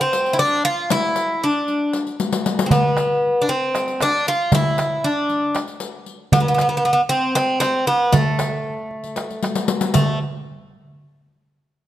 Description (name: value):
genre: Turkish makam ensemble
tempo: 232 BPM (eighths)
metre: 7/8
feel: straight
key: A makam ussak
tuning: A4 = 440 Hz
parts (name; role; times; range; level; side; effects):
- Greek bouzouki; melody; 0.0-10.2 s; A3 to F4; -18 LUFS; equal; none
- riq; percussion; 0.1-10.2 s; none; -25 LUFS; left 5 dB; none
- darbuka; percussion; 2.7-10.2 s; none; -20 LUFS; right 2 dB; none
room: moderate recital hall reverb, RT60 1.6 s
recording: close, detailed microphones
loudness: -17 LUFS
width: side -12 dB against mid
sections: 0.0-9.9 A section; 9.9-11.7 B section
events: drum fill 2.2-2.7, 9.4-9.9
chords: none